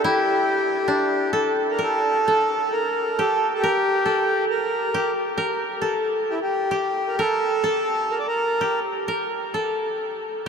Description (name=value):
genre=japanese traditional, Japanese chamber music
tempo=62-73 BPM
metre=2/4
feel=rubato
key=G kumoi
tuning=A4 = 437 Hz
part: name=accordion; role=melody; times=0.0-8.8 s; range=E4 to D5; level=-22 LUFS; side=right 1 dB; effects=none
part: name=koto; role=second line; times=0.0-10.5 s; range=D4 to Bb4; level=-24 LUFS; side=left 1 dB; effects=none
room=wet huge ambient reverb, RT60 8.3 s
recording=in a vast, echoing space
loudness=-20 LUFS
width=side -6 dB against mid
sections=0.0-1.8 A section; 1.8-10.5 B section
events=none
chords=none